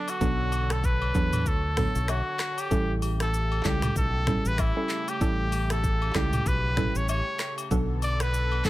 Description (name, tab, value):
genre	afrobeats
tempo	96 BPM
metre	4/4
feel	swing 58% on 16ths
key	unclear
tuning	A4 = 440 Hz
part	clear trumpet	melody	0.0-8.7 s	D4 to D5	-30 LUFS	equal	none
part	warm analog pad	sustained chords	0.0-8.7 s	C#3 to C#5	-39 LUFS	right 1 dB	chorus, tremolo, sidechain pumping
part	afro-pop drum kit	drums	0.1-8.7 s	finger snaps, handclaps, hi-hat, kick drum, rim click, shaker, toms	-29 LUFS	equal	none
part	agogo bells and woodblock	percussion	0.1-8.6 s	none	-39 LUFS	left 7 dB	none
part	soft round pluck	accompaniment	0.2-8.7 s	F#3 to A4	-32 LUFS	right 2 dB	chorus
part	fingered electric bass	bass	0.2-8.7 s	A1 to E2	-28 LUFS	equal	none
room	little or no reverb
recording	none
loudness	-24 LUFS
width	side -16 dB against mid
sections	0.0-8.7 A section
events	none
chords	0.0 Bm7; 2.7 A7; 7.7 Bm7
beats	| 0.21 0.84 1.46 2.09 | 2.71 3.34 3.96 4.59 | 5.21 5.84 6.46 7.09 | 7.71 8.34